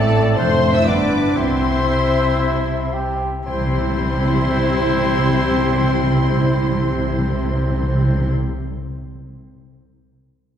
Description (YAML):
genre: quick classical-period movement for symphony orchestra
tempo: 114 BPM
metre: 4/4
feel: rubato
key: C major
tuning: A4 = 440 Hz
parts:
  - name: muted studio violin section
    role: melody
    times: 0.0-8.3 s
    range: A5 to E6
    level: -28 LUFS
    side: left 4 dB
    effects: none
  - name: bright clarinet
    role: second line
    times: 0.0-8.3 s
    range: C4 to E4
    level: -27 LUFS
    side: equal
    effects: none
  - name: muted studio violin section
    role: second line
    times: 0.0-8.3 s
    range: A4 to E5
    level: -28 LUFS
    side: left 6 dB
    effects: none
  - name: small flute group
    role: second line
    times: 0.0-8.3 s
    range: A4 to E5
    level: -27 LUFS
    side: equal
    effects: none
  - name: clear bassoon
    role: accompaniment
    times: 0.0-8.3 s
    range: A3 to G4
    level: -27 LUFS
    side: right 2 dB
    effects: none
  - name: muted studio viola section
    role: accompaniment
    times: 0.0-8.3 s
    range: G3 to E5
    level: -27 LUFS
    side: equal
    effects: none
  - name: dark French horn section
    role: sustained chords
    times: 0.0-8.3 s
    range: A3 to E4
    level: -25 LUFS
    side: left 3 dB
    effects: none
  - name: muted studio cello section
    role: bass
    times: 0.0-8.3 s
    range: F2 to C3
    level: -27 LUFS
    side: right 2 dB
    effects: none
  - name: muted studio double bass section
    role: bass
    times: 0.0-8.3 s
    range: F1 to C2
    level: -23 LUFS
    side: equal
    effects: none
  - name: timpani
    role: percussion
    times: 1.4-8.3 s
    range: C3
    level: -21 LUFS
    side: right 1 dB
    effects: none
room: wet concert hall reverb, RT60 2.2 s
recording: heard from further back in the room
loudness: -16 LUFS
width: side -9 dB against mid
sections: 0.0-3.5 A section; 3.5-7.7 B section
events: slowing down 0.0-3.5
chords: 0.4 Dm7/F; 0.9 G; 1.4 C